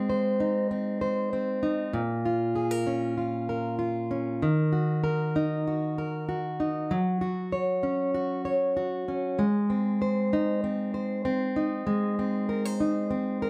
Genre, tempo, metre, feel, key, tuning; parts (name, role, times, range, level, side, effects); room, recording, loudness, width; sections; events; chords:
pop; 97 BPM; 4/4; straight; A4 = 437 Hz
fingerpicked plugged-in steel-string acoustic guitar; solo; 0.0-13.5 s; Bb2 to Db5; -28 LUFS; equal
moderate studio reverb, RT60 0.9 s; -28 LUFS; mono
0.0-13.5 A section
0.0 Ab; 1.9 Bbm; 4.4 Ebm; 6.9 Gb5; 9.4 Ab